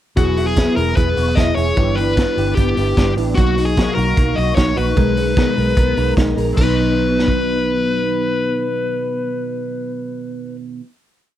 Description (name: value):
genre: jangly indie pop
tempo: 150 BPM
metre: 4/4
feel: straight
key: B major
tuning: A4 = 441 Hz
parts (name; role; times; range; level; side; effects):
- dark smooth lead guitar; melody; 0.2-10.6 s; F#4 to D#5; -21 LUFS; left 4 dB; overdrive, slapback echo
- fingerpicked plugged-in steel-string acoustic guitar; accompaniment; 0.2-10.9 s; B2 to B4; -23 LUFS; right 9 dB; none
- electric guitar through a small old amp; arpeggios; 0.2-10.9 s; E3 to A#4; -22 LUFS; left 4 dB; ensemble chorus, slapback echo
- vintage muted fingered electric bass; bass; 0.2-10.8 s; E1 to B1; -21 LUFS; equal; none
- raw garage drum kit; drums; 0.2-7.4 s; crash cymbal, hi-hat, kick drum, snare drum; -18 LUFS; equal; none
room: little or no reverb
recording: dry, close 1970s-style studio recording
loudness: -15 LUFS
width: side -12 dB against mid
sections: 0.2-6.6 bridge; 6.6-9.8 final chord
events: none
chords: 0.2 Eadd9; 1.8 G6; 3.4 Bmaj7; 5.0 G#madd9/B; 6.6 B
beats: | 0.18 0.58 0.98 1.38 | 1.78 2.18 2.58 2.98 | 3.38 3.77 4.17 4.57 | 4.97 5.37 5.77 6.17 | 6.57 6.98 7.38 7.78 | 8.19 8.59 8.99 9.40